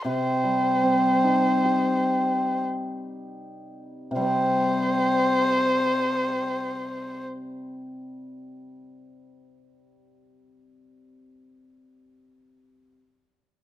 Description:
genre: chinese traditional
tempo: 34-42 BPM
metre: 4/4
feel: rubato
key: C yu mode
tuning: A4 = 436 Hz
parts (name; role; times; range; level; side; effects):
- dark erhu; melody; 0.0-7.2 s; C5; -26 LUFS; left 1 dB; none
- hammered dulcimer; accompaniment; 0.0-13.0 s; C3 to G4; -24 LUFS; equal; none
room: light reverb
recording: close, detailed microphones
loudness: -21 LUFS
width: side -13 dB against mid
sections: 0.0-4.2 A section; 4.2-10.0 B section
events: slowing down 0.0-4.2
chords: none

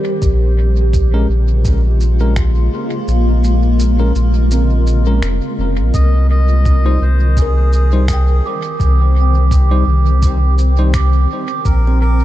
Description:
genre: ambient dub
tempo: 84 BPM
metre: 4/4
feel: swing 58% on 16ths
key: Bb dorian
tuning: A4 = 440 Hz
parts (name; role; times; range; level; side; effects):
- granular cloud pad; sustained chords; 0.0-12.2 s; Db3 to C5; -22 LUFS; left 1 dB; built-in reverb, vintage 12-bit sampler grit
- kalimba; arpeggios; 0.0-12.2 s; C4 to G5; -26 LUFS; right 2 dB; tape echo
- warm sub bass; bass; 0.2-12.2 s; F1 to C2; -12 LUFS; equal; none
- electronic kick drum; drums; 0.2-11.8 s; none; -16 LUFS; equal; small room ambience
- electronic shaker and finger snaps; drums; 0.2-11.8 s; none; -31 LUFS; right 1 dB; small room ambience, dub echo
- bell-like tine electric piano; stabs; 1.1-10.9 s; G3 to C5; -26 LUFS; left 3 dB; fast stereo tremolo, dub echo
- melodica; melody; 5.9-12.2 s; G4 to Eb5; -23 LUFS; right 4 dB; dub echo
room: little or no reverb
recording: dark, warm production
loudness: -11 LUFS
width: side -14 dB against mid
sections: 0.0-12.2 A section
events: kick drops out 3.1-5.9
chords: 0.2 Bbm7; 5.9 Cm; 11.7 Bbm7

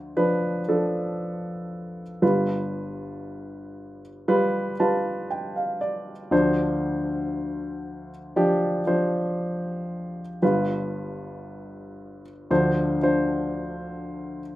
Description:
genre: folk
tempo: 58 BPM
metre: 4/4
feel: straight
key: D dorian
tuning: A4 = 441 Hz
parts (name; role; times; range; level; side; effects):
- dark baby grand piano; solo; 0.0-14.6 s; G1 to A5; -24 LUFS; equal; slapback echo
room: moderate studio reverb, RT60 0.5 s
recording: rough home demo mix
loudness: -23 LUFS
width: side -16 dB against mid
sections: 0.0-14.6 A section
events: none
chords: 0.0 Dm7; 2.2 G7; 6.3 Dm7; 10.4 G7; 12.5 Dm7

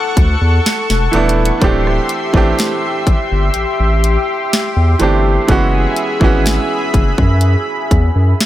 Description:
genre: contemporary R&B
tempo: 62 BPM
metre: 4/4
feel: straight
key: unclear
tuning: A4 = 441 Hz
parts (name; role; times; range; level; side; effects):
- bright grand piano; accompaniment; 0.0-8.5 s; E3 to A4; -18 LUFS; right 4 dB; none
- lush unison pad; sustained chords; 0.0-8.5 s; G4 to C#6; -18 LUFS; left 2 dB; chorus
- saturated sub bass; bass; 0.2-8.3 s; D1 to F#2; -14 LUFS; equal; none
- trap drum kit; drums; 0.2-8.5 s; hi-hat, kick drum, rim click, snare drum; -15 LUFS; equal; none
room: digital ambience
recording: none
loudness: -11 LUFS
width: side -14 dB against mid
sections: 0.0-8.5 A section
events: kick muted 3.6-5.5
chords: 0.0 E9sus4; 1.6 D9sus4; 5.5 F#9sus4

